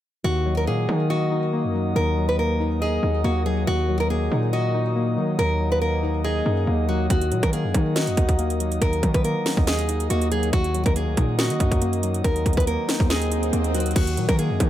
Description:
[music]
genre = hip hop, trap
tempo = 140 BPM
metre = 4/4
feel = half-time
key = Eb minor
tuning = A4 = 440 Hz
[part]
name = nylon-string guitar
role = melody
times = 0.2-14.7 s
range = Gb4 to Cb5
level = -26 LUFS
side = equal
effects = ping-pong delay
[part]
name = soft electric-piano-like synth keys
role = accompaniment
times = 0.2-14.7 s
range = Eb3 to Eb5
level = -26 LUFS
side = left 3 dB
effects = chorus
[part]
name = glass harmonica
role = sustained chords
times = 0.2-14.7 s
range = Bb4 to Eb6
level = -34 LUFS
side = right 1 dB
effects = none
[part]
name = hard-hitting 808-style bass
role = bass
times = 0.2-14.7 s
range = D2 to Eb3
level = -24 LUFS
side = equal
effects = none
[part]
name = trap drum kit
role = drums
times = 7.1-14.7 s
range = crash cymbal, hi-hat, kick drum, snare drum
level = -23 LUFS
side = equal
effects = overdrive
[part]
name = swell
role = sound effects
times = 12.4-14.0 s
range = none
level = -35 LUFS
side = right 7 dB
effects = none
[sound]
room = little or no reverb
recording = none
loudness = -20 LUFS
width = side -12 dB against mid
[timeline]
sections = 0.2-14.0 A section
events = swell 12.4-14.0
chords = 0.2 Ebm

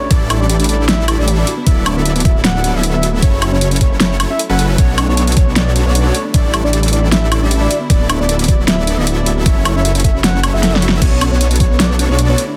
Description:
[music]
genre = future bass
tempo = 154 BPM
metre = 4/4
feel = half-time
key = D major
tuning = A4 = 438 Hz
[part]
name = soft octave-layered synth lead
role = melody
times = 0.0-12.4 s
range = C#5 to F#5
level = -25 LUFS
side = equal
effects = chorus, sidechain pumping, tape echo
[part]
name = dark studio string section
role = sustained chords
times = 0.0-12.6 s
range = D3 to E4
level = -31 LUFS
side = equal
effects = none
[part]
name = thumb-piano-like synth pluck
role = arpeggios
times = 0.0-12.6 s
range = B3 to C#5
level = -26 LUFS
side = equal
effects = chorus, vintage 12-bit sampler grit, sidechain pumping, digital delay
[part]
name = supersaw chords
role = riff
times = 0.1-12.4 s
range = F#3 to E5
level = -24 LUFS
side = equal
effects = sidechain pumping
[part]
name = detuned saw bass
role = bass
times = 0.1-12.4 s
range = D1 to B1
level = -18 LUFS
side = equal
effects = chorus, tube saturation, sidechain pumping
[part]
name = electronic kick drum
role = drums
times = 0.1-11.7 s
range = none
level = -14 LUFS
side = equal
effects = overdrive
[part]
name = pop drum kit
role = drums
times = 0.1-12.5 s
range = crash cymbal, hi-hat, snare drum, woodblock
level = -19 LUFS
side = equal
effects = overdrive
[sound]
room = digital ambience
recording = dense, heavily limited modern master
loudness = -14 LUFS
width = mono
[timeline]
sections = 0.0-12.6 A section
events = drum fill 10.6-11.0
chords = 0.0 A7sus4; 1.5 D69; 3.2 F#m7; 4.8 Bm9; 6.1 A7sus4; 7.7 D69; 9.5 F#m7; 11.0 Bm9

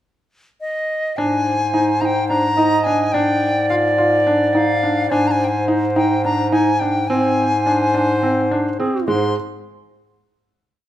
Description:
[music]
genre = contemporary instrumental, chamber music in an uneven meter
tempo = 212 BPM (eighths)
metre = 7/8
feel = straight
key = Ab lydian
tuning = A4 = 441 Hz
[part]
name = bright reedy wooden flute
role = melody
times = 0.6-9.3 s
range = D5 to C6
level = -21 LUFS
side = left 1 dB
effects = none
[part]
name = warm clarinet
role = second line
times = 1.2-9.3 s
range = Ab4 to Eb5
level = -21 LUFS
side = equal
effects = none
[part]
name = felt-muted upright piano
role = arpeggios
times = 1.2-9.3 s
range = Ab3 to F4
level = -20 LUFS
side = right 1 dB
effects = none
[part]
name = clear bass clarinet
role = bass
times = 1.2-9.3 s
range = Ab2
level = -22 LUFS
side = left 1 dB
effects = none
[sound]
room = moderate recital hall reverb, RT60 1.3 s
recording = minimal, uncompressed stereo recording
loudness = -15 LUFS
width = side -12 dB against mid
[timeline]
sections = 0.0-1.2 pickup bar; 1.2-9.1 A section; 9.1-10.9 final chord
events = none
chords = 0.0 N.C.; 1.2 Ab; 3.1 G5/Ab; 5.1 Ab

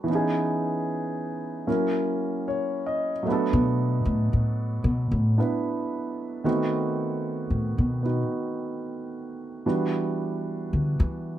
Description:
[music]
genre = jazz ballad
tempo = 75 BPM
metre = 4/4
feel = swing 69% on 8ths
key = unclear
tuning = A4 = 440 Hz
[part]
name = warm grand piano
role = accompaniment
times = 0.0-11.4 s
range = D#3 to Eb5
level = -26 LUFS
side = right 1 dB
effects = none
[part]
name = upright bass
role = bass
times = 3.5-11.4 s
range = A2 to E3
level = -23 LUFS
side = equal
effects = none
[sound]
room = little or no reverb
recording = none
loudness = -24 LUFS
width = side -12 dB against mid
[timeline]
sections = 0.0-11.4 A section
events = upright bass solo 0.0-11.4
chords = 0.1 C#m9; 1.7 F#7; 3.3 Bm7; 6.4 B7b9; 9.6 Em9

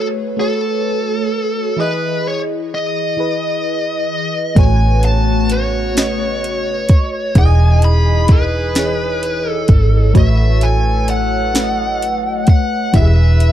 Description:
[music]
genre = slow six-eight R&B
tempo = 43 BPM (dotted quarters)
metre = 6/8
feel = straight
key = unclear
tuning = A4 = 437 Hz
[part]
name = bluesy overdriven lead guitar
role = melody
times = 0.0-13.5 s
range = A4 to B5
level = -20 LUFS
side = equal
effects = distortion
[part]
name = FM electric piano with soft pad layer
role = accompaniment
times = 0.0-13.5 s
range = E3 to E5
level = -20 LUFS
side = left 2 dB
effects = chorus, phaser
[part]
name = warm horn section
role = stabs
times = 4.6-13.5 s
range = C#3 to B4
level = -27 LUFS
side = right 7 dB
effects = none
[part]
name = vintage muted fingered electric bass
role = bass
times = 4.6-13.5 s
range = E1 to A1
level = -14 LUFS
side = equal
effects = none
[part]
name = smooth R&B drum kit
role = drums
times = 4.6-13.5 s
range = hi-hat, kick drum, snare drum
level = -12 LUFS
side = equal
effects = none
[sound]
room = little or no reverb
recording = dark, warm production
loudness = -13 LUFS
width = side -12 dB against mid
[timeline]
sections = 0.0-13.5 A section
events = none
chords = 0.0 A69; 1.8 Emaj7; 4.6 A69; 7.4 Emaj7; 10.2 A69; 12.9 E

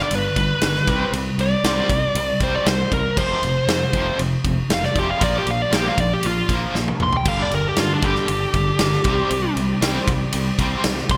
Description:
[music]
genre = hard rock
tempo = 117 BPM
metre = 4/4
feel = straight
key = unclear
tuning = A4 = 439 Hz
[part]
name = bluesy overdriven lead guitar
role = melody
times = 0.0-11.2 s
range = D4 to C6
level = -25 LUFS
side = equal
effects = distortion, delay
[part]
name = cranked stack guitar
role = riff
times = 0.0-11.2 s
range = F2 to C4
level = -30 LUFS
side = equal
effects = overdrive, ensemble chorus
[part]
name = overdriven electric guitar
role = riff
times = 0.0-11.2 s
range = F2 to C4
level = -29 LUFS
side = equal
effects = tremolo
[part]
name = fingered electric bass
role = bass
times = 0.1-11.2 s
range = F1 to G2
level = -28 LUFS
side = equal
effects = none
[part]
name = big rock drum kit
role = drums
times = 0.1-11.2 s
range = crash cymbal, kick drum, ride cymbal, snare drum, toms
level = -25 LUFS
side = equal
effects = gated reverb
[part]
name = bright tonewheel organ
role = sustained chords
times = 7.3-11.2 s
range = G3 to D5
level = -35 LUFS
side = equal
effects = slow rotary speaker
[sound]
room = moderate plate reverb, RT60 2.0 s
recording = bright 1980s-style digital production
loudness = -20 LUFS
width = mono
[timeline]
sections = 0.0-11.2 A section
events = lead electric guitar solo 0.0-11.2; drum fill 6.8-7.3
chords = 0.0 G; 0.9 C5; 3.2 F5; 5.2 Bb5; 7.3 G5; 9.1 C5

